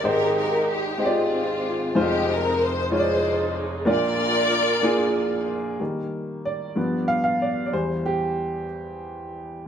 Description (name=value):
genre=gospel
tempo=62 BPM (dotted quarters)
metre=6/8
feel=straight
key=unclear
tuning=A4 = 441 Hz
part: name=warm studio string section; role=melody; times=0.0-5.5 s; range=C4 to D5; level=-23 LUFS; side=left 1 dB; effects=none
part: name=warm upright piano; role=accompaniment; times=0.0-9.7 s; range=F1 to F5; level=-23 LUFS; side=equal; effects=none
room=wet large studio reverb, RT60 1.4 s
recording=band playing live in one room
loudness=-21 LUFS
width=side -8 dB against mid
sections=0.0-5.8 A section; 5.8-9.7 B section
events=upright piano solo 5.8-9.7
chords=0.0 Abmaj7; 1.9 Fm7; 3.9 Bb; 5.8 Eb; 6.8 G7; 7.7 Em